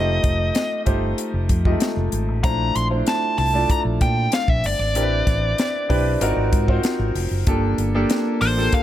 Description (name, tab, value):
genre	polished 1980s jazz-funk pop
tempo	95 BPM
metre	4/4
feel	straight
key	unclear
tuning	A4 = 441 Hz
part	nasal lead guitar with a parked wah	melody	0.0-8.8 s	C5 to C6	-24 LUFS	left 1 dB	overdrive, ping-pong delay
part	clear concert grand piano	accompaniment	0.0-8.8 s	G#3 to Eb5	-24 LUFS	equal	wide subtle chorus
part	fingered electric bass	bass	0.0-8.7 s	F1 to Bb2	-22 LUFS	equal	none
part	tight funk drum kit	drums	0.2-8.8 s	hi-hat, kick drum, snare drum	-22 LUFS	equal	none
room	light reverb, small room ambience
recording	none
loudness	-18 LUFS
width	side -12 dB against mid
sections	0.0-8.8 A section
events	none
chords	0.0 F9; 2.4 Bbmaj9#11; 5.0 Am11; 6.2 G#13; 7.5 Gm9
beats	0.55 1.18 1.81 | 2.44 3.07 3.70 4.33 | 4.96 5.58 6.21 6.84 | 7.47 8.10 8.73